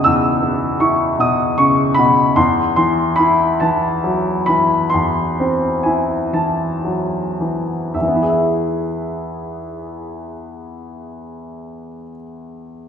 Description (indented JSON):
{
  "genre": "classical",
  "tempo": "34-53 BPM (dotted quarters)",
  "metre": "12/8",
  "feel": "rubato",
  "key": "E major",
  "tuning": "A4 = 441 Hz",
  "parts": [
    { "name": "clear concert grand piano", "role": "melody", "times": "0.0-12.9 s", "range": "E2 to F#6", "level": "-16 LUFS", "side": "left 1 dB", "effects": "none" }
  ],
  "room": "wet scoring stage reverb, RT60 1.6 s",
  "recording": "heard from further back in the room",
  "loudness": "-14 LUFS",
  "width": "side -8 dB against mid",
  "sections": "0.0-7.9 A section; 7.9-12.9 B section",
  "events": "slowing down 0.0-7.9",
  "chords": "0.0 E; 2.4 Am/E; 7.9 E"
}